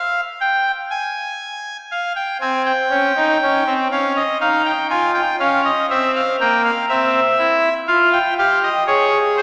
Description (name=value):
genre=classical, baroque-style 3-part fugue for pipe organ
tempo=60 BPM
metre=4/4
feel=straight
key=F minor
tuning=A4 = 440 Hz
part: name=pipe organ, trumpet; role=solo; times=0.0-9.4 s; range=Bb3 to Ab5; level=-18 LUFS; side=equal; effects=none
room=wet church reverb, RT60 3.4 s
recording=heard from further back in the room, small speaker sound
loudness=-18 LUFS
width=mono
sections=0.0-1.9 A section; 1.9-9.4 B section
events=none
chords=0.0 N.C.; 3.9 Dbadd9; 5.9 C; 7.9 Fm